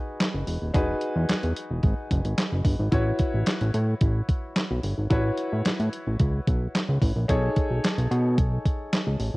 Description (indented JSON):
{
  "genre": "early-eighties boogie funk",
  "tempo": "110 BPM",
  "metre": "4/4",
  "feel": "straight",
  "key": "E major",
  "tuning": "A4 = 440 Hz",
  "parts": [
    { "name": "clear baby grand piano", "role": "accompaniment", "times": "0.0-9.4 s", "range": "D#4 to C#5", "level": "-31 LUFS", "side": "left 1 dB", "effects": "none" },
    { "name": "clean 12-bit digital drum machine", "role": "drums", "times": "0.2-9.3 s", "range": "handclaps, hi-hat, kick drum, snare drum", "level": "-25 LUFS", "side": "equal", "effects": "overdrive, cassette tape" },
    { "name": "fat analog bass", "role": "bass", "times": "0.3-9.4 s", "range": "D#1 to B2", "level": "-24 LUFS", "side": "equal", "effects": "none" }
  ],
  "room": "digital ambience",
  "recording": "home recording on cassette",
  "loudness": "-22 LUFS",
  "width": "side -22 dB against mid",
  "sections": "0.0-9.4 A section",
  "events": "none",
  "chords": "0.0 Emaj9; 2.9 A69; 7.3 B13",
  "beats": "0.20 | 0.74 1.29 1.83 2.38 | 2.93 3.47 4.02 4.56 | 5.11 5.65 6.20 6.74 | 7.29 7.83 8.38 8.93"
}